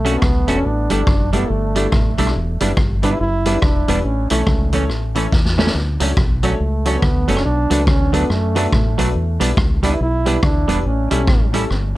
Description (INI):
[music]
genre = ska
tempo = 141 BPM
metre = 4/4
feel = swing 61% on 8ths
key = unclear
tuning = A4 = 440 Hz
[part]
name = clear trombone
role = melody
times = 0.0-11.5 s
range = F#3 to E4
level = -23 LUFS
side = right 2 dB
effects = tube saturation, tape echo
[part]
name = semi-hollow electric guitar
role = accompaniment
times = 0.0-11.6 s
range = E3 to F#4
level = -22 LUFS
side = right 5 dB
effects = none
[part]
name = fingered electric bass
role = bass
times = 0.0-12.0 s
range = E1 to A2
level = -20 LUFS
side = equal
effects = none
[part]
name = clear upright piano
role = stabs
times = 0.1-11.7 s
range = C#4 to C#5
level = -25 LUFS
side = left 5 dB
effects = none
[part]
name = street-band drum kit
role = drums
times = 0.1-11.8 s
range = hi-hat, kick drum, rim click, snare drum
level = -18 LUFS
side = equal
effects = none
[sound]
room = light reverb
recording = dark, warm production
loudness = -15 LUFS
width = side -17 dB against mid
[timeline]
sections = 0.0-12.0 A section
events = drum fill 5.3-5.8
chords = 0.0 Dmaj7; 0.7 A7sus4; 2.4 Em7; 4.0 A; 5.8 Dmaj7; 7.5 Bm7; 9.2 Em7; 10.9 A7